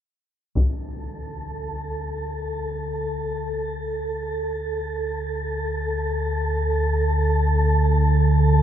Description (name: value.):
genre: dark ambient drone.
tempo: free time.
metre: none.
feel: none.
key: unclear.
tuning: A4 = 440 Hz.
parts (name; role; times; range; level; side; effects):
deep rumbling drone; drone; 0.9-8.6 s; D2 to D3; -23 LUFS; equal; built-in reverb.
taiko ensemble; percussion; 0.6-0.7 s; none; -25 LUFS; left 1 dB; low-pass filter on perc.
wind-like tuned noise texture; texture; 1.0-8.6 s; A4; -26 LUFS; right 1 dB; built-in reverb, shimmer reverb.
room: moderate huge ambient reverb, RT60 7.3 s.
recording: none.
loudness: -21 LUFS.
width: side -10 dB against mid.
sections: 0.5-8.6 A section.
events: none.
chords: 0.5 D5.